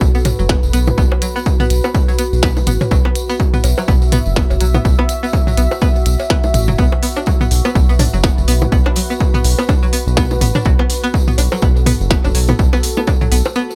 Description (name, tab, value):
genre	minimal techno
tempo	124 BPM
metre	4/4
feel	swing 57% on 16ths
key	unclear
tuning	A4 = 440 Hz
part	round analog bass	bass	0.0-13.4 s	F#1 to B1	-19 LUFS	equal	sidechain pumping
part	electronic kick drum	drums	0.0-13.2 s	none	-17 LUFS	equal	none
part	tambourine	percussion	0.0-13.8 s	none	-32 LUFS	equal	none
part	deep dark ambient pad	texture	0.0-13.8 s	F#4 to E5	-26 LUFS	equal	chorus, built-in reverb, sidechain pumping
part	string-like resonator pluck	riff	0.1-13.6 s	F#3 to D4	-24 LUFS	equal	chorus, sidechain pumping, digital delay
part	minimal click drum kit	drums	0.3-13.4 s	hi-hat, snare drum	-22 LUFS	equal	none
part	electronic toms, cowbell and bongos	percussion	0.3-13.5 s	none	-23 LUFS	equal	digital delay
room	little or no reverb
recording	none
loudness	-15 LUFS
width	mono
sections	0.0-13.8 A section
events	break 13.6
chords	0.0 B5